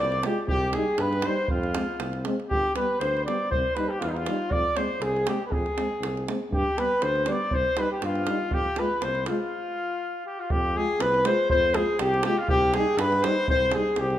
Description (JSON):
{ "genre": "balkan folk, Balkan brass band", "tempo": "120 BPM", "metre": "2/4", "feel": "swing 55% on 16ths", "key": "F dorian sharp4", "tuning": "A4 = 440 Hz", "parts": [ { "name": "mellow flugelhorn", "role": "melody", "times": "0.0-14.2 s", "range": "Eb4 to D5", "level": "-26 LUFS", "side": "left 1 dB", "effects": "tape echo" }, { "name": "clear trumpet", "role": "second line", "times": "0.0-14.2 s", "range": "Eb4 to D5", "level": "-32 LUFS", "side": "left 1 dB", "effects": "none" }, { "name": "warm tuba", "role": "bass", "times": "0.0-14.2 s", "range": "G1 to G2", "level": "-31 LUFS", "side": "equal", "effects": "none" }, { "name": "davul", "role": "percussion", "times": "0.1-14.2 s", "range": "none", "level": "-31 LUFS", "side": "right 2 dB", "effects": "none" }, { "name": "mellow French horn", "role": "accompaniment", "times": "0.3-13.9 s", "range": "B3 to F4", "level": "-35 LUFS", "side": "left 5 dB", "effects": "none" }, { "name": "mellow euphonium", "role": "accompaniment", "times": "0.3-13.8 s", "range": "G3 to Ab3", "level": "-35 LUFS", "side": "right 4 dB", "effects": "none" } ], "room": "wet recital hall reverb, RT60 1.5 s", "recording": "none", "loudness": "-23 LUFS", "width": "side -12 dB against mid", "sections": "0.0-2.5 A section; 2.5-10.5 B section; 10.5-14.2 A section", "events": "stop 9.5-10.5", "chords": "0.5 Cm; 1.5 Fm; 2.5 G; 3.5 Cm; 4.5 Fm; 6.5 G; 7.5 Cm; 8.5 Fm; 12.5 Cm" }